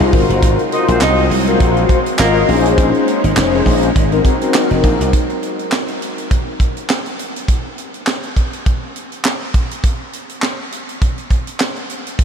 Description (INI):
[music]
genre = early-eighties boogie funk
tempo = 102 BPM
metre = 4/4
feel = swing 56% on 16ths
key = unclear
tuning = A4 = 440 Hz
[part]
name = mellow synth brass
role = accompaniment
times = 0.0-5.1 s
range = C4 to Eb5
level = -17 LUFS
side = left 4 dB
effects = chorus
[part]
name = soft string machine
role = sustained chords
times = 0.0-5.1 s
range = Gb3 to Db4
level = -23 LUFS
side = equal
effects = ensemble chorus
[part]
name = slap bass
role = bass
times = 0.0-5.1 s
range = F1 to C2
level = -16 LUFS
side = equal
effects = none
[part]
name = tight funk drum kit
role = drums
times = 0.0-12.2 s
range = handclaps, hi-hat, kick drum, snare drum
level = -17 LUFS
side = right 1 dB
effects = none
[part]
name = clear horn section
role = second line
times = 0.7-2.4 s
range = Bb3 to Eb5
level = -23 LUFS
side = right 2 dB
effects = analog delay
[part]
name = group handclap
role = percussion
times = 1.0-11.8 s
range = none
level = -31 LUFS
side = right 5 dB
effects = none
[sound]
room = moderate huge ambient reverb, RT60 7.8 s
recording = dreamy mix soaked in reverb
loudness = -13 LUFS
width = side -7 dB against mid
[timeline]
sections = 0.0-5.1 A section; 5.1-12.2 B section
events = none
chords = 0.1 Ab13; 2.5 Bbm11; 4.0 Ab7; 5.1 N.C.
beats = | 0.42 1.01 1.60 2.19 | 2.78 3.37 3.96 4.54 | 5.13 5.72 6.31 6.90 | 7.48 8.07 8.66 9.25 | 9.84 10.43 11.01 11.60 | 12.19